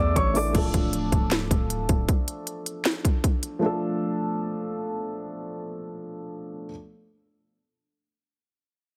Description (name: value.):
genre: hip hop, trap.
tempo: 156 BPM.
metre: 4/4.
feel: half-time.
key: D harmonic minor.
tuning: A4 = 440 Hz.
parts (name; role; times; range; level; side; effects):
dark baby grand piano; melody; 0.0-0.5 s; C#5 to D6; -31 LUFS; equal; tape echo.
dark grand piano; accompaniment; 0.0-6.7 s; E3 to A4; -32 LUFS; equal; none.
airy breathy pad; sustained chords; 0.0-0.5 s; none; barely audible; none; none.
hard-hitting 808-style bass; bass; 0.0-2.1 s; C#1 to E2; -30 LUFS; equal; none.
trap drum kit; drums; 0.2-3.5 s; crash cymbal, handclaps, hi-hat, kick drum, snare drum; -26 LUFS; equal; none.
room: light reverb.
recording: heavily compressed radio sound.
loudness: -26 LUFS.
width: mono.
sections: 0.5-6.7 A section.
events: none.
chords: 0.0 Asus4; 0.5 Dm.